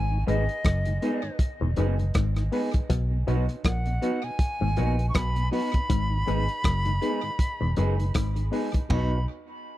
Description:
roots reggae; 80 BPM; 4/4; swing 56% on 16ths; A4 = 440 Hz
silver concert flute; melody; 0.0-9.3 s; D#5 to C#6; -33 LUFS; equal; tape echo
muted clav; riff; 0.0-8.4 s; E2 to B2; -33 LUFS; left 6 dB; auto-wah
vintage muted fingered electric bass; bass; 0.0-9.2 s; E1 to B1; -25 LUFS; equal
mellow tonewheel organ; accompaniment; 0.1-9.2 s; G#2 to D#4; -35 LUFS; left 2 dB; chorus vibrato, slow rotary speaker
electric guitar through a small old amp; accompaniment; 0.3-9.1 s; F#3 to G#4; -35 LUFS; right 5 dB; spring reverb, tape echo
barky reed electric piano; stabs; 0.3-9.2 s; B3 to B4; -33 LUFS; left 4 dB; overdrive
crunchy breakbeat drum kit; drums; 0.3-9.1 s; hi-hat, kick drum, ride cymbal, rim click, toms; -27 LUFS; equal
studio ambience; dry, close 1970s-style studio recording; -23 LUFS; side -15 dB against mid
0.0-8.9 A section
0.0 G#m; 2.9 B; 5.9 G#m; 8.9 B
0.65 1.40 2.15 | 2.90 3.65 4.40 5.15 | 5.90 6.65 7.40 8.15 | 8.90

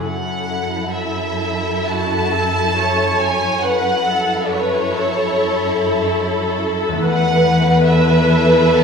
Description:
cinematic, emotional film score for orchestra; 64-71 BPM; 4/4; rubato; F# minor; A4 = 437 Hz
warm symphonic violin section; second line; 0.0-8.8 s; E4 to A4; -22 LUFS; left 2 dB
concert harp; arpeggios; 0.0-8.8 s; E2 to B4; -25 LUFS; left 3 dB
warm symphonic cello section; bass; 0.0-8.8 s; E2 to F#2; -21 LUFS; right 1 dB
warm symphonic violin section; melody; 0.1-8.8 s; C#5 to A5; -21 LUFS; equal
rich symphonic viola section; accompaniment; 1.9-8.8 s; F#4 to C#5; -19 LUFS; equal
wet stone room reverb, RT60 1.4 s; minimal, uncompressed stereo recording; -15 LUFS; side -6 dB against mid
0.0-8.8 A section
0.0 F#m7; 7.1 Esus4
| 0.05 0.94 1.87 2.76 | 3.63 4.51 5.36 6.20 | 7.05 7.90 8.77

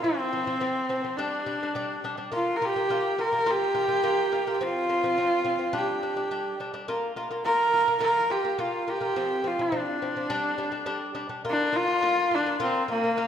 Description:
mongolian traditional, Mongolian folk; 105 BPM; 4/4; straight; Bb gong mode; A4 = 439 Hz
clear horsehead fiddle; melody; 0.0-13.3 s; Bb3 to Bb4; -25 LUFS; equal
lute; arpeggios; 0.0-13.3 s; F3 to F4; -31 LUFS; left 1 dB
wet recital hall reverb, RT60 1.7 s; minimal, uncompressed stereo recording; -24 LUFS; side -9 dB against mid
0.0-13.3 A section
0.0 F5; 1.2 G5; 2.3 Bb5; 4.6 F5; 5.7 G5; 6.9 Bb5; 9.2 F5; 10.3 G5; 11.5 Bb5
| 0.03 0.61 1.18 1.75 | 2.32 2.89 3.46 4.04 | 4.61 5.18 5.75 6.32 | 6.89 7.46 8.03 8.60 | 9.17 9.74 10.31 10.88 | 11.45 12.02 12.59 13.16

